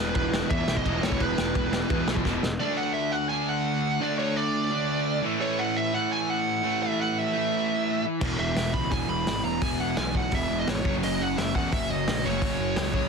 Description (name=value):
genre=punk rock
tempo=171 BPM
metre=4/4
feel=straight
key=unclear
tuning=A4 = 440 Hz
part: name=smooth overdriven lead guitar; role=melody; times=0.0-13.1 s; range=B4 to B5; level=-29 LUFS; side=right 2 dB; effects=tape echo
part: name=cranked stack guitar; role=riff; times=0.0-13.1 s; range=E2 to D4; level=-31 LUFS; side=equal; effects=overdrive
part: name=crunchy overdriven guitar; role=riff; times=0.0-13.1 s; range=E2 to D4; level=-30 LUFS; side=right 1 dB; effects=none
part: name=fuzz picked electric bass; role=bass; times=0.0-2.6, 8.2-13.1 s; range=E1 to E2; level=-32 LUFS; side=equal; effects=overdrive
part: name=loose indie drum kit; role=drums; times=0.1-2.5, 8.2-13.0 s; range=crash cymbal, hi-hat, kick drum, ride cymbal, snare drum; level=-30 LUFS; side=equal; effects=none
room=little or no reverb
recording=dense, heavily limited modern master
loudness=-24 LUFS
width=side -5 dB against mid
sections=0.0-2.6 A section; 2.6-13.1 B section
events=drum fill 2.3-2.6; half time 2.6-13.1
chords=0.0 E5; 2.6 D; 5.2 A5; 8.2 E; 10.8 F#5